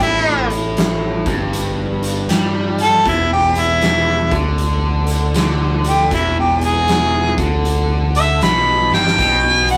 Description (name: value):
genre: blues rock power trio and southern rock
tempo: 78 BPM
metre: 4/4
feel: swing 65% on 8ths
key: unclear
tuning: A4 = 440 Hz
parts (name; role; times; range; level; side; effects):
- warm harmonica; melody; 0.0-9.8 s; E4 to B5; -17 LUFS; equal; overdrive
- biting overdriven guitar; riff; 0.0-9.8 s; E2 to G3; -24 LUFS; equal; none
- overdriven picked electric bass; bass; 0.0-9.8 s; E1 to G2; -23 LUFS; equal; none
- oversized low-tuned drum kit; drums; 0.0-9.8 s; hi-hat, kick drum, snare drum; -23 LUFS; equal; none
room: moderate small room reverb, RT60 0.5 s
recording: rough rehearsal-room recording, tube saturation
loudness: -16 LUFS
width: mono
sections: 0.0-9.8 A section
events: drum fill 8.8-9.2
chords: 0.0 Gsus2; 3.1 E7(no3); 9.2 B5